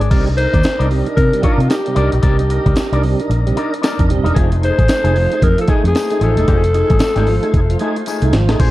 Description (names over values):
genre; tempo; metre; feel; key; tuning
funk; 113 BPM; 4/4; swing 60% on 16ths; unclear; A4 = 440 Hz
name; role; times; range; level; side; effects
electric guitar with an envelope filter; accompaniment; 0.0-8.7 s; A3 to Eb5; -25 LUFS; left 5 dB; none
tonewheel organ; stabs; 0.0-8.7 s; Bb2 to Bb4; -22 LUFS; right 4 dB; overdrive, chorus vibrato, slow rotary speaker, analog delay
vintage muted fingered electric bass; bass; 0.0-8.7 s; Eb1 to C3; -16 LUFS; equal; none
breakbeat sampler-style drum kit; drums; 0.0-8.7 s; crash cymbal, hi-hat, kick drum, snare drum; -17 LUFS; equal; none
tonewheel organ; sustained chords; 0.1-8.7 s; A3 to C5; -28 LUFS; equal; overdrive, slow rotary speaker
breathy alto saxophone; melody; 0.4-8.1 s; F4 to C5; -19 LUFS; left 2 dB; none
tambourine; percussion; 0.6-8.2 s; none; -35 LUFS; left 4 dB; none
room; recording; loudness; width
light reverb, digital ambience; dark, warm production; -12 LUFS; side -16 dB against mid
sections
0.1-8.6 A section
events
drum fill 8.1-8.6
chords
0.1 Cm9; 4.4 F7#9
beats
| 0.11 0.64 1.17 1.71 | 2.23 2.77 3.30 3.83 | 4.36 4.89 5.42 5.95 | 6.48 7.01 7.54 8.07 | 8.60